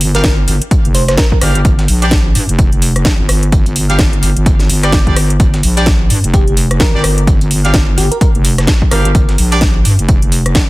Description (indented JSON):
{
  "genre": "bass house",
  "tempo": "128 BPM",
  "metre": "4/4",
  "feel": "swing 59% on 16ths",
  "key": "G minor",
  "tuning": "A4 = 441 Hz",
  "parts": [
    { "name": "wobble bass", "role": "bass", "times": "0.0-10.7 s", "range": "F1 to G2", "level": "-13 LUFS", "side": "equal", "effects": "chorus, overdrive, sidechain pumping" },
    { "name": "breakbeat sampler-style drum kit", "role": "drums", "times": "0.0-10.7 s", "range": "hi-hat, snare drum", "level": "-26 LUFS", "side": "right 1 dB", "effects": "high-pass filter on snare, high-pass filter on hats" },
    { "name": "house drum kit", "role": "drums", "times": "0.0-10.7 s", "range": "hi-hat, rim click, snare drum", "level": "-17 LUFS", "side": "equal", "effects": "overdrive" },
    { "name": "bell-like FM electric piano", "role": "melody", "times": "0.1-1.4, 6.3-9.6 s", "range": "G4 to C5", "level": "-21 LUFS", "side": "equal", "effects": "chorus, tape echo" },
    { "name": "bright horn section", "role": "stabs", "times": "0.1-9.6 s", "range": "G3 to F5", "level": "-20 LUFS", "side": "right 1 dB", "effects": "sidechain pumping, tape echo" },
    { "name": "electronic kick drum", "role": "drums", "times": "0.2-10.7 s", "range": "none", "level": "-12 LUFS", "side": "equal", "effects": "overdrive" }
  ],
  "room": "little or no reverb",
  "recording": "dense, heavily limited modern master",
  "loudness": "-9 LUFS",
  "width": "side -19 dB against mid",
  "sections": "0.0-10.7 A section",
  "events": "none",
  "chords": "0.0 G5"
}